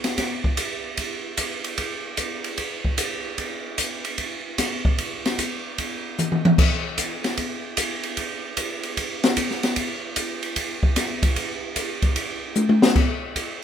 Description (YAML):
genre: jazz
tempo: 150 BPM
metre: 4/4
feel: swing 66% on 8ths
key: none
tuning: none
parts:
  - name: open jazz drum kit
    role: drums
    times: 0.0-13.5 s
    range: crash cymbal, hi-hat, kick drum, ride cymbal, snare drum, toms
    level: -22 LUFS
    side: equal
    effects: none
room: light reverb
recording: minimal, uncompressed stereo recording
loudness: -22 LUFS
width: side -9 dB against mid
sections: 0.0-13.0 A section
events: drum fill 6.2-6.6, 12.6-13.0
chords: none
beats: | 0.17 0.58 0.98 1.38 | 1.78 2.18 2.58 2.98 | 3.38 3.78 4.18 4.58 | 4.98 5.38 5.78 6.18 | 6.58 6.98 7.38 7.78 | 8.18 8.57 8.97 9.37 | 9.77 10.17 10.57 10.97 | 11.37 11.76 12.16 12.56 | 12.96 13.36